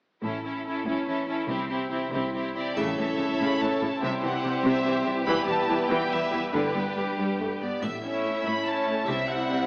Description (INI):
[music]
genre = cinematic, heroic adventure film score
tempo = 95 BPM (dotted quarters)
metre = 6/8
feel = straight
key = unclear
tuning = A4 = 440 Hz
[part]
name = rich studio violin section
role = melody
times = 0.2-9.7 s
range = G4 to B5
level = -31 LUFS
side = equal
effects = none
[part]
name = rich chamber violin section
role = second line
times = 0.2-9.7 s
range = E4 to E5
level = -30 LUFS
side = equal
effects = none
[part]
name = rich chamber viola section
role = accompaniment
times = 0.2-9.7 s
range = C3 to E4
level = -30 LUFS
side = equal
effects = none
[part]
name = concert harp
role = arpeggios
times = 0.2-9.7 s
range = E2 to A4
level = -35 LUFS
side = equal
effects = none
[part]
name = clear chamber double bass section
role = bass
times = 0.2-9.5 s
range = E1 to C2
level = -39 LUFS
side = equal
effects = none
[part]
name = rich symphonic cello section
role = bass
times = 0.2-9.6 s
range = E2 to C3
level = -33 LUFS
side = equal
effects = none
[part]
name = mellow French horn section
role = sustained chords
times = 2.8-9.6 s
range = G3 to D4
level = -31 LUFS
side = equal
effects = none
[part]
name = timpani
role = percussion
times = 2.8-3.4 s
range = A2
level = -44 LUFS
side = equal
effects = none
[part]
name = triangle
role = percussion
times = 2.8-3.6, 7.8-8.6 s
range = none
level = -53 LUFS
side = equal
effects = none
[sound]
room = moderate scoring stage reverb, RT60 1.8 s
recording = AM radio sound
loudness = -24 LUFS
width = side -36 dB against mid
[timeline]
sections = 0.2-2.8 A section; 2.8-9.7 B section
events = none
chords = 0.2 A; 1.5 C; 2.8 A; 4.0 C; 5.3 Em; 6.5 G; 7.8 A; 9.1 C